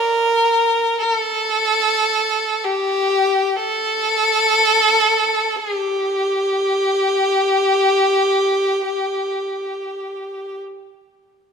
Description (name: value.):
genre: caucasian folk.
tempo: free time.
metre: none.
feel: none.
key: G minor.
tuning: A4 = 438 Hz.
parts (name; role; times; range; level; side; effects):
clear violin; solo; 0.0-10.6 s; G4 to Bb4; -16 LUFS; equal; none.
room: moderate scoring stage reverb, RT60 2.1 s.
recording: minimal, uncompressed stereo recording.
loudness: -16 LUFS.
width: side -6 dB against mid.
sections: 0.0-11.5 A section.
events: none.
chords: none.